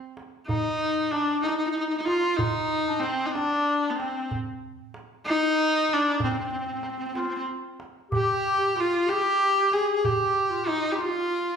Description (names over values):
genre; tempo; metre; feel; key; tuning
Arabic maqam ensemble; 63 BPM (dotted quarters); 6/8; straight; unclear; A4 = 440 Hz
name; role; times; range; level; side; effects
darbuka; percussion; 0.2-11.1 s; none; -34 LUFS; right 3 dB; none
clear viola; melody; 0.5-11.6 s; B3 to Ab4; -24 LUFS; left 1 dB; none
warm clarinet; second line; 0.5-11.6 s; C4 to Ab4; -30 LUFS; equal; none
room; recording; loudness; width
wet large studio reverb, RT60 1.2 s; band playing live in one room; -23 LUFS; side -7 dB against mid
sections
0.5-11.6 A section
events
none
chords
none